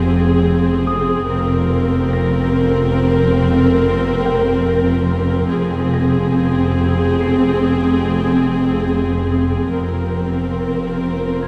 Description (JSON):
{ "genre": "cinematic, suspense film score", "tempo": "71 BPM", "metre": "5/4", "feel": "straight", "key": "F minor", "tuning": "A4 = 440 Hz", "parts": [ { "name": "rich studio viola section", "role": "accompaniment", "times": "0.0-11.5 s", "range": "C4 to Bb4", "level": "-20 LUFS", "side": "equal", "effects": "none" }, { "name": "dark studio double bass section", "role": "bass", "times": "0.0-11.5 s", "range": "F1", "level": "-23 LUFS", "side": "equal", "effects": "none" }, { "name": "warm studio cello section", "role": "bass", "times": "0.0-11.5 s", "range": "F2", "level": "-22 LUFS", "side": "equal", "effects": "none" }, { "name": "concert harp", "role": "texture", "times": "0.9-11.5 s", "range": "G5 to C7", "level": "-32 LUFS", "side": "equal", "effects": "none" } ], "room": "wet cathedral reverb, RT60 5.2 s", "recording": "recorded in a church or concert hall", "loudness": "-17 LUFS", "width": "mono", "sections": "0.0-11.5 A section", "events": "none", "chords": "0.0 Fm; 1.3 Bbsus2/F; 5.5 Fm; 9.7 Bbsus2/F" }